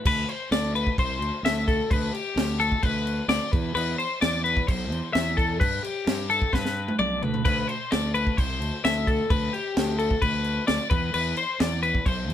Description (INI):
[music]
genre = math rock and midwest emo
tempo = 130 BPM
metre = 4/4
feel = straight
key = G major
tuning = A4 = 441 Hz
[part]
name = twelve-string electric guitar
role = arpeggios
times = 0.0-12.3 s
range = G4 to E5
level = -26 LUFS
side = left 4 dB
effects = none
[part]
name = fuzz fingered electric bass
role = bass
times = 0.1-12.3 s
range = B1 to G2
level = -28 LUFS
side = equal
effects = overdrive
[part]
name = compact cocktail drum kit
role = drums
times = 0.1-12.3 s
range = crash cymbal, kick drum, snare drum, splash cymbal, toms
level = -27 LUFS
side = equal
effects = none
[sound]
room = light reverb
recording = band playing live in one room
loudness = -22 LUFS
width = side -10 dB against mid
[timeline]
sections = 0.1-12.3 A section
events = drum fill 6.5-7.5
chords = 0.1 D5; 1.9 G/D; 3.5 Cmaj7/E; 5.6 G; 7.5 D5; 9.3 G/D; 10.9 Cmaj7/E